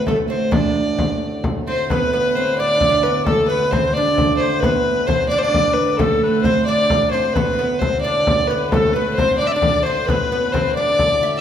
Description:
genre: medieval dance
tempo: 88 BPM (dotted quarters)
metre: 6/8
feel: straight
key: unclear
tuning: A4 = 440 Hz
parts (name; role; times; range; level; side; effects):
- dark fiddle; melody; 0.0-11.4 s; A4 to E5; -18 LUFS; left 1 dB; none
- oud; second line; 0.0-11.4 s; A3 to E4; -24 LUFS; right 6 dB; none
- pedal harmonium; drone; 0.0-11.4 s; D2 to A2; -28 LUFS; equal; none
- frame drum; percussion; 0.1-11.3 s; none; -22 LUFS; left 1 dB; none
- bright shawm; second line; 1.7-11.4 s; A4 to D5; -24 LUFS; left 4 dB; none
room: wet recital hall reverb, RT60 1.3 s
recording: minimal, uncompressed stereo recording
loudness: -15 LUFS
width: side -9 dB against mid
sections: 0.0-1.9 A section; 1.9-11.4 B section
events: none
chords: none

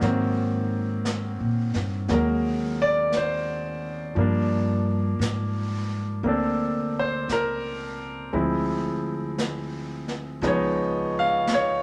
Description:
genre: jazz ballad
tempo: 58 BPM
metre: 4/4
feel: swing 69% on 8ths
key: unclear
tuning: A4 = 440 Hz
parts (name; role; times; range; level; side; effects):
- clear concert grand piano; accompaniment; 0.0-11.8 s; Eb3 to F5; -27 LUFS; equal; none
- upright bass; bass; 0.0-11.8 s; Db2 to Bb2; -31 LUFS; equal; none
- jazz brush drum kit; drums; 0.0-11.8 s; brushed snare drum, hi-hat, snare drum; -36 LUFS; equal; none
room: wet studio reverb, RT60 0.8 s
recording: none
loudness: -26 LUFS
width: mono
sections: 0.0-11.8 A section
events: none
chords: 0.0 Ab9; 4.2 Gm7; 8.3 Dm7b5; 10.4 Db9

